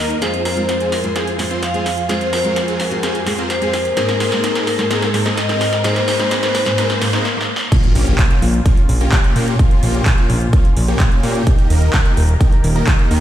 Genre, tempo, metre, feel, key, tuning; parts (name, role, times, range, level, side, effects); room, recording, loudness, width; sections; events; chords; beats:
EDM, festival progressive house; 128 BPM; 4/4; straight; A4 = 440 Hz
vibraphone with hard mallets; melody; 0.0-7.0 s; Ab4 to F5; -21 LUFS; left 2 dB; ping-pong delay
muted studio string section; sustained chords; 0.0-13.2 s; Eb2 to C5; -26 LUFS; equal; sidechain pumping
big supersaw lead; riff; 0.0-13.2 s; Ab3 to Eb5; -23 LUFS; equal; sidechain pumping, low-pass filter, ping-pong delay
riser, swell and impact; sound effects; 0.0-9.6 s; -26 LUFS; right 1 dB
big-room dance drum kit; drums; 0.1-13.2 s; crash cymbal, handclaps, hi-hat, snare drum; -22 LUFS; right 1 dB; high-pass filter on snare, small room ambience, high-pass filter on hats, high-pass filter on cymbals
picked steel-string acoustic guitar; accompaniment; 0.2-7.5 s; Ab2 to Ab4; -24 LUFS; left 1 dB; vintage 12-bit sampler grit, sidechain pumping
electronic kick drum; drums; 7.7-13.0 s; -13 LUFS; equal; small room ambience
fat analog bass; bass; 8.0-13.2 s; Eb1 to Bb2; -15 LUFS; equal; sidechain pumping
light reverb; played on a big sound system in a bare room, stone room reverb; -14 LUFS; side -12 dB against mid
0.0-7.7 A section; 7.7-13.2 B section
build-up 0.0-7.7; drum fill 0.0-7.2, 7.2-7.7; riser 0.0-7.2; swell 6.8-7.7; break 7.2-7.7; drop 7.7-13.2; impact 7.7-9.6
0.2 Fm; 4.0 Abadd9; 7.7 Bbm; 11.5 Eb
| 0.22 0.69 1.16 1.62 | 2.09 2.56 3.03 3.50 | 3.97 4.44 4.91 5.38 | 5.84 6.31 6.78 7.25 | 7.72 8.19 8.66 9.12 | 9.59 10.06 10.53 11.00 | 11.47 11.94 12.41 12.88